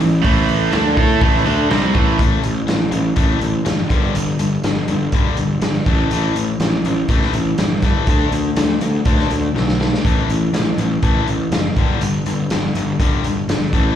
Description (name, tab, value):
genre	classic rock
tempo	122 BPM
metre	4/4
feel	straight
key	unclear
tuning	A4 = 441 Hz
part	overdriven electric guitar	riff	0.0-2.2 s	A2 to A4	-19 LUFS	right 11 dB	slapback echo
part	tight distorted guitar	riff	0.0-14.0 s	G2 to A4	-22 LUFS	left 10 dB	distortion, slapback echo
part	fuzz picked electric bass	bass	0.0-13.9 s	F#1 to A2	-19 LUFS	right 1 dB	overdrive
part	raw garage drum kit	drums	0.0-13.8 s	hi-hat, kick drum, snare drum	-19 LUFS	equal	none
room	little or no reverb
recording	live gig heard through the venue's PA, club ambience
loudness	-15 LUFS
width	side -10 dB against mid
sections	0.0-2.2 A section; 2.2-14.0 B section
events	drum fill 9.6-10.1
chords	0.0 A5; 3.9 G5; 5.9 A5; 8.1 D5; 10.1 A5; 11.8 G5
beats	| 0.25 0.73 1.22 1.70 | 2.19 2.68 3.17 3.66 | 4.15 4.64 5.13 5.62 | 6.11 6.61 7.10 7.59 | 8.08 8.57 9.07 9.56 | 10.05 10.54 11.03 11.53 | 12.02 12.51 13.00 13.49